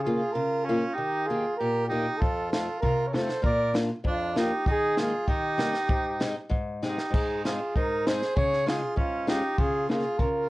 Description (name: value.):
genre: alpine folk, alpine dance band.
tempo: 98 BPM.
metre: 2/4.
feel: straight.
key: Ab major.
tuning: A4 = 439 Hz.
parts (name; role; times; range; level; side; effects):
mellow flugelhorn; melody; 0.0-10.5 s; F4 to D5; -28 LUFS; right 1 dB; none.
warm harmonica; second line; 0.0-10.5 s; Db4 to Bb4; -33 LUFS; right 2 dB; none.
fingerpicked steel-string acoustic guitar; accompaniment; 0.0-10.5 s; F2 to G4; -30 LUFS; left 2 dB; none.
compact cocktail drum kit; drums; 2.2-10.3 s; crash cymbal, kick drum, snare drum; -28 LUFS; equal; none.
room: moderate studio reverb, RT60 0.5 s.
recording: worn, warbling old tape, cassette tape, warbly pitch drift, nothing above 10.9 kHz.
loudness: -24 LUFS.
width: side -19 dB against mid.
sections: 0.0-7.1 A section; 7.1-10.5 A section.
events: drum fill 6.8-7.1.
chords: 0.0 Bbm/Db; 1.0 Eb; 2.2 F; 3.5 Bb; 4.7 Ebsus4; 5.3 Eb; 5.9 Ab; 8.4 Db; 9.6 Bbm/Db.